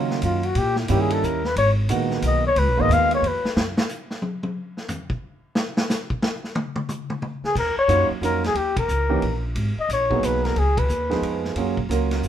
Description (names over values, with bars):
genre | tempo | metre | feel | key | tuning
jazz, small-group swing and bop | 180 BPM | 3/4 | swing 64% on 8ths | Eb minor | A4 = 440 Hz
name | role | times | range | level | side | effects
warm grand piano | accompaniment | 0.0-3.2, 7.9-12.3 s | Eb3 to Bb4 | -24 LUFS | right 6 dB | none
upright bass | bass | 0.0-3.8, 7.4-12.3 s | Ab1 to Db3 | -24 LUFS | equal | none
vintage drum kit | drums | 0.1-12.3 s | crash cymbal, hi-hat, kick drum, ride cymbal, snare drum, toms | -28 LUFS | equal | none
breathy flugelhorn | melody | 0.2-3.5, 7.5-11.4 s | Fb4 to F5 | -22 LUFS | left 3 dB | none
room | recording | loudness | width
light reverb | minimal, uncompressed stereo recording | -20 LUFS | side -10 dB against mid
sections
0.0-7.6 A section; 7.6-12.3 B section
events
flugelhorn solo 0.0-7.6; drum solo 3.6-7.6; band accent 8.7, 10.7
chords
0.0 Ebm9; 0.6 Eb7b9; 1.6 Abm7; 2.6 Db13 (rootless); 3.6 N.C.; 5.6 Db5; 7.6 Ebm9; 8.6 Eb7; 9.6 Abm7; 10.6 Db9; 11.6 Gbmaj7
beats
0.23 | 0.56 0.89 1.23 | 1.56 1.89 2.22 | 2.56 2.89 3.22 | 3.56 3.89 4.22 | 4.56 4.89 5.22 | 5.55 5.89 6.22 | 6.55 6.89 7.22 | 7.55 7.89 8.22 | 8.55 8.89 9.22 | 9.56 9.89 10.22 | 10.56 10.89 11.23 | 11.56 11.89 12.23